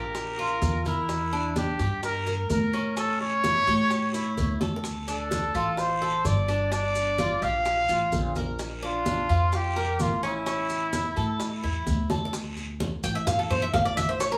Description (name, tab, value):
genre	latin, Cuban son and guajira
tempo	128 BPM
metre	4/4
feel	straight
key	D minor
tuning	A4 = 439 Hz
part	breathy trumpet	melody	0.0-11.8 s	E4 to F5	-30 LUFS	equal	none
part	Cuban tres	arpeggios	0.0-14.4 s	C#4 to G5	-33 LUFS	equal	none
part	upright bass	bass	0.0-14.4 s	G1 to A2	-32 LUFS	equal	none
part	bongos	percussion	0.1-14.4 s	none	-38 LUFS	equal	none
part	congas	percussion	0.2-14.4 s	none	-36 LUFS	equal	none
part	guiro	percussion	0.2-14.4 s	none	-46 LUFS	equal	none
part	maracas	percussion	0.2-14.4 s	none	-44 LUFS	equal	none
room	wet studio reverb, RT60 0.8 s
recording	band playing live in one room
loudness	-27 LUFS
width	mono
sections	0.0-12.3 A section; 12.3-14.4 B section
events	drum fill 4.6, 12.1; Cuban tres solo 12.3-14.4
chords	0.0 Gm7; 1.1 Em7b5; 3.0 A7; 4.8 Dm7; 6.7 Gm7; 8.6 Bb; 10.5 A; 12.3 D5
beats	0.15 0.62 | 1.09 1.56 2.03 2.50 | 2.97 3.44 3.90 4.37 | 4.84 5.31 5.78 6.25 | 6.72 7.19 7.65 8.12 | 8.59 9.06 9.53 10.00 | 10.46 10.93 11.40 11.87 | 12.34 12.80 13.27 13.74 | 14.20